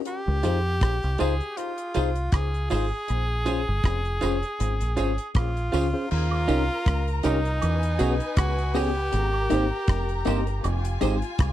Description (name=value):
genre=lovers rock reggae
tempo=79 BPM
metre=4/4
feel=swing 56% on 16ths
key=unclear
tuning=A4 = 440 Hz
part: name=edgy tenor saxophone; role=melody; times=0.1-11.0 s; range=Eb4 to Ab4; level=-30 LUFS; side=equal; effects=tape echo
part: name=damped 70s drum kit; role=drums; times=0.1-11.5 s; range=crash cymbal, hi-hat, kick drum, rim click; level=-26 LUFS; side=equal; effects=tape echo
part: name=deep dub fingered electric bass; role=bass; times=0.3-11.5 s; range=F1 to F2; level=-25 LUFS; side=equal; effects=none
part: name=tine electric piano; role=accompaniment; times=0.4-11.2 s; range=Ab3 to C5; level=-30 LUFS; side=left 3 dB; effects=medium stereo tremolo, tape echo
part: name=twelve-string electric guitar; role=stabs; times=0.4-11.2 s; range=Eb4 to Db5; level=-28 LUFS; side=right 4 dB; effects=lush chorus
part: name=tambourine and woodblock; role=percussion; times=0.4-11.5 s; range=none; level=-39 LUFS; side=right 9 dB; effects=none
part: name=warm studio violin section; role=second line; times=6.1-11.5 s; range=F4 to Bb5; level=-35 LUFS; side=left 2 dB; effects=none
room=little or no reverb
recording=dry, close 1970s-style studio recording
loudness=-22 LUFS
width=side -13 dB against mid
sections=0.0-6.1 A section; 6.1-11.5 B section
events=none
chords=0.1 Dbmaj7; 3.1 Bbm7; 6.1 Eb7; 7.6 E69; 9.1 Abmaj7; 10.6 Fm7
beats=| 0.05 0.81 1.57 2.32 | 3.08 3.84 4.59 5.35 | 6.10 6.86 7.62 8.37 | 9.12 9.88 10.63 11.39